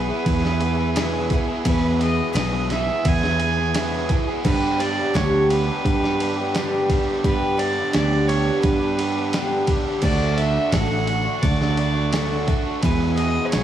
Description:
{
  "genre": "folk rock and heartland rock",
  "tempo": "86 BPM",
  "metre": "4/4",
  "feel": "straight",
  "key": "unclear",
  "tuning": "A4 = 440 Hz",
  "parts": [
    { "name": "rich fiddle", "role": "melody", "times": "0.0-13.6 s", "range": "B4 to G#5", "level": "-27 LUFS", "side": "right 2 dB", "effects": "analog delay" },
    { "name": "picked twelve-string acoustic guitar", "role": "accompaniment", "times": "0.0-13.6 s", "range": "E2 to G#4", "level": "-26 LUFS", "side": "left 3 dB", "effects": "none" },
    { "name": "tonewheel organ", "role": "sustained chords", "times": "0.0-13.6 s", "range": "B3 to B4", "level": "-33 LUFS", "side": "right 2 dB", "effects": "none" },
    { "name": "overdriven electric guitar", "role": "riff", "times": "0.0-13.6 s", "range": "E2 to G#4", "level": "-26 LUFS", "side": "right 2 dB", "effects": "none" },
    { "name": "fingered electric bass", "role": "bass", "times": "0.0-13.6 s", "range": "A1 to G2", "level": "-23 LUFS", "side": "right 2 dB", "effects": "none" },
    { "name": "dusty soul sampler-style drum kit", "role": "drums", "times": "0.3-13.6 s", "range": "crash cymbal, kick drum, ride cymbal, snare drum", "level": "-25 LUFS", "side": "right 1 dB", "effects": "none" }
  ],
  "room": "light reverb, digital ambience",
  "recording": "studio reverb",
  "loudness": "-18 LUFS",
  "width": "side -10 dB against mid",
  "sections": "0.0-13.6 A section",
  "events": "none",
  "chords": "0.0 E; 4.5 G; 10.0 D; 12.8 E"
}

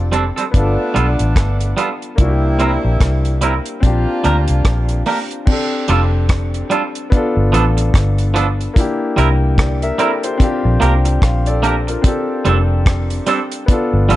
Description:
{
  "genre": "lovers rock reggae",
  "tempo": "73 BPM",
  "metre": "4/4",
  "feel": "swing 59% on 16ths",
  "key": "F major",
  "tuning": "A4 = 439 Hz",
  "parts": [
    { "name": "clear saxophone section", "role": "second line", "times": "0.0-5.0 s", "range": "A3 to F4", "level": "-25 LUFS", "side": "right 2 dB", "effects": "none" },
    { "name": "warm baby grand piano", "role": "accompaniment", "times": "0.0-14.2 s", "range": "Bb3 to G5", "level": "-20 LUFS", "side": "left 2 dB", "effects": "tape echo" },
    { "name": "vintage muted fingered electric bass", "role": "bass", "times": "0.0-14.2 s", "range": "F1 to D2", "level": "-16 LUFS", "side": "equal", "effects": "none" },
    { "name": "twangy electric guitar", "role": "stabs", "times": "0.1-14.2 s", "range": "F3 to Bb4", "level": "-19 LUFS", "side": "right 4 dB", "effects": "none" },
    { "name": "deep reggae drum kit", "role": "drums", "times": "0.1-14.2 s", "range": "crash cymbal, hi-hat, kick drum, rim click", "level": "-16 LUFS", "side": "equal", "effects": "none" }
  ],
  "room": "small room ambience",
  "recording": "nothing above 10.7 kHz",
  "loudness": "-13 LUFS",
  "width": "side -15 dB against mid",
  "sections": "0.0-5.5 A section; 5.5-14.2 B section",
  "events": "none",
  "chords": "0.0 F69; 0.5 G9; 2.2 C7; 3.8 Bb6; 5.5 F69; 7.1 G9; 8.8 C7; 10.4 Bb6; 12.0 F69"
}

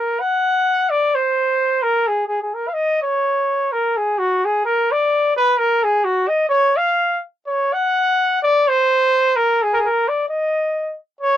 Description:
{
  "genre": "mexican folk",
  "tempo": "128 BPM",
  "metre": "2/4",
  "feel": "swing 55% on 8ths, rubato",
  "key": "unclear",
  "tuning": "A4 = 440 Hz",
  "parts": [
    { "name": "mellow trumpet", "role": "solo", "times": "0.0-11.4 s", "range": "Gb4 to Gb5", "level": "-16 LUFS", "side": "equal", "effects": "none" }
  ],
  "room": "light reverb",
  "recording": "dry, close 1970s-style studio recording",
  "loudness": "-16 LUFS",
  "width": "side -11 dB against mid",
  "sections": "0.0-3.7 A section; 3.7-11.2 A section",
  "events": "none",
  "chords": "none"
}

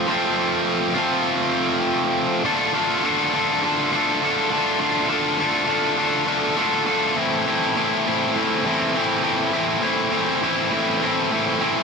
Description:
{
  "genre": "rock",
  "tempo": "101 BPM",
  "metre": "4/4",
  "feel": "straight",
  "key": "unclear",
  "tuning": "A4 = 440 Hz",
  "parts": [
    { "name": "tight distorted guitar", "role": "solo", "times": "0.0-11.8 s", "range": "A2 to A4", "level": "-18 LUFS", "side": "equal", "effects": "distortion" }
  ],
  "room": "light reverb",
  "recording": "dark, warm production",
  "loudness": "-18 LUFS",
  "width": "side -4 dB against mid",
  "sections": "0.0-2.4 A section; 2.4-11.8 B section",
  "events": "none",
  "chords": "0.0 F; 2.4 Dm; 7.2 Am"
}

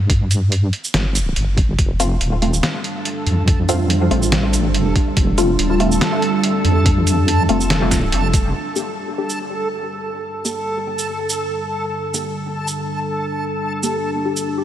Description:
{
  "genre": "deep dubstep",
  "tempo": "142 BPM",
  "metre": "4/4",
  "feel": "swing 54% on 16ths, half-time",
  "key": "unclear",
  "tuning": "A4 = 439 Hz",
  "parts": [
    { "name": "deep soft wobble bass", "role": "bass", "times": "0.0-8.5 s", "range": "Eb1 to G2", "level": "-18 LUFS", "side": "equal", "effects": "chorus" },
    { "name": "electronic kick drum", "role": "drums", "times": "0.1-8.4 s", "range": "none", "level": "-18 LUFS", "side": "equal", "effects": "small room reverb" },
    { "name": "trip hop sampler-style drum kit", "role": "drums", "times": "0.1-14.4 s", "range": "hi-hat, shaker, snare drum", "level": "-23 LUFS", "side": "right 1 dB", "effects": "small room reverb" },
    { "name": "deep dark ambient pad", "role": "sustained chords", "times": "2.5-14.6 s", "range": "G3 to D4", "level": "-23 LUFS", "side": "equal", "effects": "chorus, built-in reverb" },
    { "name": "backwards swelling texture", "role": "texture", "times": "3.0-14.6 s", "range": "A4", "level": "-24 LUFS", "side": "right 1 dB", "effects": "built-in reverb" },
    { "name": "filtered dub chord stab", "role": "stabs", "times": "2.0-14.4 s", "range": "A3 to G4", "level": "-24 LUFS", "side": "left 1 dB", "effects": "phaser, analog chorus, vintage 12-bit sampler grit, dub echo" }
  ],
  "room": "moderate huge ambient reverb, RT60 4.5 s",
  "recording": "dreamy mix soaked in reverb",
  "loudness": "-16 LUFS",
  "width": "side -11 dB against mid",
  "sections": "0.0-8.5 A section; 8.5-14.6 B section",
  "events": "filter sweep on ambient pad 8.5-14.6",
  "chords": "0.0 N.C.; 1.8 F; 8.5 Gm"
}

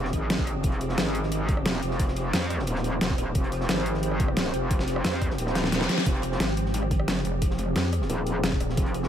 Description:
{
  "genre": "dark technical drum and bass",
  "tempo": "177 BPM",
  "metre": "4/4",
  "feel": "straight",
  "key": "F minor",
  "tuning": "A4 = 441 Hz",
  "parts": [
    { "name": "swarming drone", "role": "sustained chords", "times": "0.0-9.1 s", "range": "F3 to C5", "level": "-31 LUFS", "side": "right 1 dB", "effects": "built-in reverb, sidechain pumping" },
    { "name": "metallic wobble bass", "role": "bass", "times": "0.0-9.1 s", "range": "Eb1 to F2", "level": "-28 LUFS", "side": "equal", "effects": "chorus, overdrive" },
    { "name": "crunchy breakbeat drum kit", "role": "drums", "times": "0.0-9.1 s", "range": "hi-hat, snare drum", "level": "-38 LUFS", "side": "equal", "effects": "high-pass filter on hats, small room ambience, high-pass filter on snare, high-pass filter on room" },
    { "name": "dubstep drum kit", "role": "drums", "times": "0.1-9.0 s", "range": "hi-hat, rim click, snare drum", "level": "-28 LUFS", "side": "equal", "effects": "overdrive, small room ambience" },
    { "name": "electronic kick drum", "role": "drums", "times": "0.1-8.8 s", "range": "none", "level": "-26 LUFS", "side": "equal", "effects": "overdrive, small room ambience" },
    { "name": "reverse cymbal", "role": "sound effects", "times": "5.5-6.1 s", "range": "none", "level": "-35 LUFS", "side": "left 4 dB", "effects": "none" },
    { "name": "pulsing pluck wobble bass", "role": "bass", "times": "6.4-8.8 s", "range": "Eb1 to F2", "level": "-28 LUFS", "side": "equal", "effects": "chorus" }
  ],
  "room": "little or no reverb",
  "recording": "none",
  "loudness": "-23 LUFS",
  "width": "side -10 dB against mid",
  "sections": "0.0-9.1 A section",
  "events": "kick drops out 5.4-6.1; reverse cymbal 5.5-6.1; drum fill 5.6-6.1",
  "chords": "0.0 Fmadd9"
}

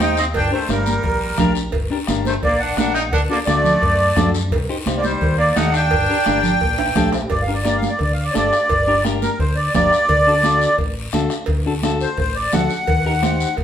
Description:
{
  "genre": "latin, cumbia",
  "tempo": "172 BPM",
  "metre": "4/4",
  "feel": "straight",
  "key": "G harmonic minor",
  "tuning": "A4 = 441 Hz",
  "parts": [
    { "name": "accordion", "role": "melody", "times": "0.0-13.5 s", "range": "Bb4 to G5", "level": "-18 LUFS", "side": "equal", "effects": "light tremolo tuning" },
    { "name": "bright trumpet", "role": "second line", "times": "0.0-7.1 s", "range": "G3 to Eb4", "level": "-24 LUFS", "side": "right 2 dB", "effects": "none" },
    { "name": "clean electric guitar", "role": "accompaniment", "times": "0.0-13.5 s", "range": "D4 to C5", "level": "-24 LUFS", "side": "left 5 dB", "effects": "none" },
    { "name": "deep dub fingered electric bass", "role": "bass", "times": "0.0-13.6 s", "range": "G1 to F#2", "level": "-23 LUFS", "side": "equal", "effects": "none" },
    { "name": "bombo", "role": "percussion", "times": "0.0-13.6 s", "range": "none", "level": "-25 LUFS", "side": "left 1 dB", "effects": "none" },
    { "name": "congas", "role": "percussion", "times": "0.0-13.4 s", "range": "none", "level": "-23 LUFS", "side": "right 4 dB", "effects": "none" },
    { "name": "guiro", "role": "percussion", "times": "0.0-13.6 s", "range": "none", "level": "-32 LUFS", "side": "left 4 dB", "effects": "none" },
    { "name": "cowbell and timbales", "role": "percussion", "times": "0.3-13.6 s", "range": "none", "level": "-28 LUFS", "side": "right 5 dB", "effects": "none" }
  ],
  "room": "wet studio reverb, RT60 0.8 s",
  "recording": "band playing live in one room",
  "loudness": "-15 LUFS",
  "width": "side -9 dB against mid",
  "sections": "0.0-7.3 A section; 7.3-13.6 B section",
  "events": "drum fill 6.8-7.3; accordion solo 7.3-13.6",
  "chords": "0.3 Gm; 3.1 D; 4.5 Cm; 5.9 Gm; 10.1 D; 12.9 Eb"
}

